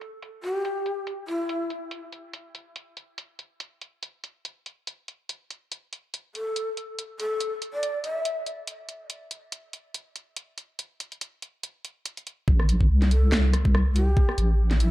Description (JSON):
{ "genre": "deep dubstep", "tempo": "142 BPM", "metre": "4/4", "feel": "swing 56% on 16ths, half-time", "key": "A minor", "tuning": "A4 = 444 Hz", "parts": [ { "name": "garage drum kit", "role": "drums", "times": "0.0-14.9 s", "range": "hi-hat, rim click, snare drum", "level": "-31 LUFS", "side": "equal", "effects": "low-pass filter on hats, low-pass filter on snare, low-pass filter on room" }, { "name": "breathy long shakuhachi", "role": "melody", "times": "0.4-1.7, 6.4-8.4, 13.1-14.9 s", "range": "E4 to E5", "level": "-30 LUFS", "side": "left 1 dB", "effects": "dub echo" }, { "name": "deep soft wobble bass", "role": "bass", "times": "12.5-14.9 s", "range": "A1 to C2", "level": "-20 LUFS", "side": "equal", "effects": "chorus" }, { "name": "electronic kick drum", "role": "drums", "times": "12.5-14.3 s", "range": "none", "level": "-20 LUFS", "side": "equal", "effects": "none" } ], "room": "light reverb, digital ambience", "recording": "dark, warm production", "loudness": "-23 LUFS", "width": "side -16 dB against mid", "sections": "0.0-12.5 A section; 12.5-14.9 B section", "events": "drop 12.5-14.9", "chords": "0.0 N.C.; 12.5 Am", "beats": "0.23 | 0.65 1.07 1.49 1.92 | 2.34 2.76 3.18 3.60 | 4.03 4.45 4.87 5.29 | 5.72 6.14 6.56 6.99 | 7.41 7.83 8.25 8.68 | 9.10 9.52 9.94 10.37 | 10.79 11.21 11.63 12.06 | 12.48 12.90 13.32 13.75 | 14.17 14.59" }